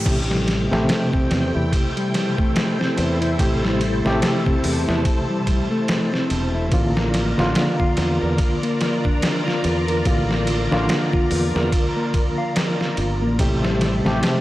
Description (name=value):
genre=trip hop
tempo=72 BPM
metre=4/4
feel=swing 59% on 16ths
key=A phrygian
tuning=A4 = 440 Hz
part: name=overdriven reed electric piano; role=accompaniment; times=0.0-14.4 s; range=C3 to G4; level=-24 LUFS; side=equal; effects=fast tremolo, harmonic tremolo, vintage 12-bit sampler grit, tape echo
part: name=mellow electric guitar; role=arpeggios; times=0.0-14.4 s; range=G3 to F5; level=-26 LUFS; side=left 2 dB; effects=tape echo
part: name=fingered electric bass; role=bass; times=0.0-14.2 s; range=E1 to E2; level=-23 LUFS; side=equal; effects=tube saturation
part: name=string machine, cellos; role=sustained chords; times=0.1-14.4 s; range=E4 to Bb5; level=-26 LUFS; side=equal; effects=ensemble chorus
part: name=trip hop sampler-style drum kit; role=drums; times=0.1-14.4 s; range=crash cymbal, hi-hat, kick drum, ride cymbal, snare drum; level=-22 LUFS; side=equal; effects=none
room=little or no reverb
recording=dry, gritty hardware recording, vinyl crackle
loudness=-18 LUFS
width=side -16 dB against mid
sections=0.1-14.4 A section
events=none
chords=0.1 Am7; 6.7 Bb/A; 13.4 Am7